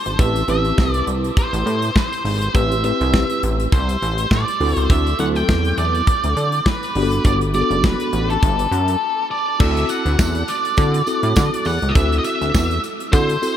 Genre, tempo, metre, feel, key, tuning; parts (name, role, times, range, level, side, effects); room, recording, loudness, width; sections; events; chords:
early-eighties boogie funk; 102 BPM; 4/4; swing 56% on 16ths; A4 = 440 Hz
octave-fuzz lead guitar; melody; 0.0-13.6 s; A4 to G5; -22 LUFS; equal; distortion, diffuse ambient delay
chorused synth bass; bass; 0.1-13.4 s; F#1 to D3; -20 LUFS; equal
modern studio drum kit; drums; 0.1-13.6 s; crash cymbal, hi-hat, kick drum, snare drum; -20 LUFS; equal
mellow tine electric piano; accompaniment; 0.2-13.6 s; F#3 to B4; -24 LUFS; left 1 dB; medium stereo tremolo
tambourine; percussion; 9.6-13.6 s; -36 LUFS; right 6 dB
moderate huge ambient reverb, RT60 8.4 s; dreamy mix soaked in reverb; -16 LUFS; side -10 dB against mid
0.0-9.6 A section; 9.6-13.6 B section
break 9.0-9.6
0.2 Am7; 4.6 D7; 7.0 Gmaj9; 9.6 D9